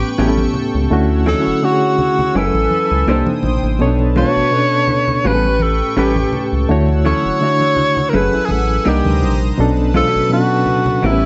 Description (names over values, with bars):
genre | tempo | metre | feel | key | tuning
R&B, neo-soul | 83 BPM | 4/4 | swing 54% on 16ths | unclear | A4 = 441 Hz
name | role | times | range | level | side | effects
breathy tenor saxophone | melody | 0.0-11.3 s | E4 to C#5 | -20 LUFS | equal | none
bright reed electric piano | accompaniment | 0.0-11.3 s | A2 to G#5 | -20 LUFS | equal | fast tremolo
chorused pulse-width pad | sustained chords | 0.0-11.3 s | A4 to E6 | -29 LUFS | equal | none
rubbery square bass | bass | 0.0-11.3 s | F#1 to D2 | -20 LUFS | equal | none
vintage hollow-body jazz guitar | second line | 0.2-11.2 s | F#3 to D5 | -23 LUFS | equal | none
congas | percussion | 0.2-11.2 s | none | -28 LUFS | equal | none
room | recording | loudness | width
moderate small room reverb, RT60 0.5 s | nothing above 7.9 kHz | -15 LUFS | mono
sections
0.0-11.3 A section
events
none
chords
0.2 A7; 0.9 Dmaj9; 2.3 F#m11; 3.1 Cm9; 3.8 Bm9; 5.2 A9; 6.7 Dmaj9; 8.1 F#m11; 8.9 Cm9; 9.6 Bm9